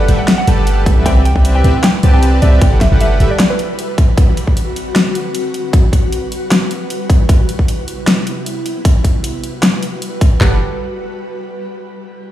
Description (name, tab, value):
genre	future bass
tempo	154 BPM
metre	4/4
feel	swing 54% on 16ths, half-time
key	G major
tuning	A4 = 441 Hz
part	mallet-like synth pluck	melody	0.0-4.1 s	B4 to G5	-23 LUFS	right 1 dB	chorus, sidechain pumping, digital delay
part	ethereal airy pad	sustained chords	0.0-10.6 s	C3 to F#5	-23 LUFS	left 1 dB	ensemble chorus, built-in reverb, sidechain pumping
part	soft supersaw	riff	0.0-3.3, 10.4-10.6 s	G3 to A5	-21 LUFS	right 1 dB	sidechain pumping, ping-pong delay
part	warm 808-style bass	bass	0.0-3.3, 10.4-10.6 s	G1 to C2	-11 LUFS	equal	sidechain pumping
part	downlifter	sound effects	0.0-1.1 s	none	barely audible	none	none
part	big-room dance drum kit	drums	0.1-10.3 s	hi-hat, snare drum	-17 LUFS	left 1 dB	overdrive
part	big-room dance drum kit	drums	0.9-10.5 s	handclaps, kick drum	-11 LUFS	equal	overdrive
room	digital ambience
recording	played on a big sound system in a bare room, stone room reverb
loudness	-11 LUFS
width	side -13 dB against mid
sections	0.0-10.4 A section; 10.4-12.0 B section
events	none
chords	0.0 Gmaj7; 1.1 Cmaj7; 2.6 Gmaj7; 4.2 D7; 5.5 Gmaj7; 7.3 Cmaj7; 8.9 Gmaj7